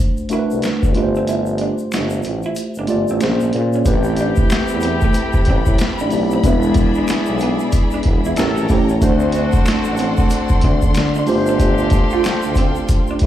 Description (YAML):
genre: R&B, neo-soul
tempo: 93 BPM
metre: 4/4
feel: swing 60% on 16ths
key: A minor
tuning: A4 = 440 Hz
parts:
  - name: mellow tine electric piano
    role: accompaniment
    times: 0.0-13.3 s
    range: G3 to D5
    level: -19 LUFS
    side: equal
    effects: medium stereo tremolo, slapback echo
  - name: egg shaker and finger snaps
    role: percussion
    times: 0.2-13.2 s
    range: none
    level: -34 LUFS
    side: left 3 dB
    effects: none
  - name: electric guitar through a small old amp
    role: second line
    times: 0.3-13.3 s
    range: A3 to G4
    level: -25 LUFS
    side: right 4 dB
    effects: phaser, slapback echo
  - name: clear tuba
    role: bass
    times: 0.3-13.3 s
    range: E1 to D3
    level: -21 LUFS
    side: equal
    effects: none
  - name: boom bap sampler-style drum kit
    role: drums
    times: 0.3-13.3 s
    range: hi-hat, kick drum, snare drum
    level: -18 LUFS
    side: equal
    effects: none
  - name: warm studio string section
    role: sustained chords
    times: 3.9-13.3 s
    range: C4 to C6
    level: -26 LUFS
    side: left 1 dB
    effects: none
  - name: warm horn section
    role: stabs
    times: 3.9-13.2 s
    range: C4 to A4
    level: -26 LUFS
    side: left 2 dB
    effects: slapback echo
room: light reverb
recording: live gig heard through the venue's PA, club reverb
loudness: -14 LUFS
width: side -12 dB against mid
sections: 0.0-3.9 A section; 3.9-13.3 B section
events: kick muted 1.3-3.9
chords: 0.0 D7; 1.0 G9sus4; 3.2 Bbm9; 3.9 Am9; 6.4 E7; 8.4 A7b9; 9.0 D7; 11.3 G9sus4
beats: 0.63 | 1.28 1.92 2.57 3.21 | 3.86 4.50 5.15 5.79 | 6.44 7.08 7.73 8.37 | 9.02 9.66 10.31 10.95 | 11.60 12.24 12.89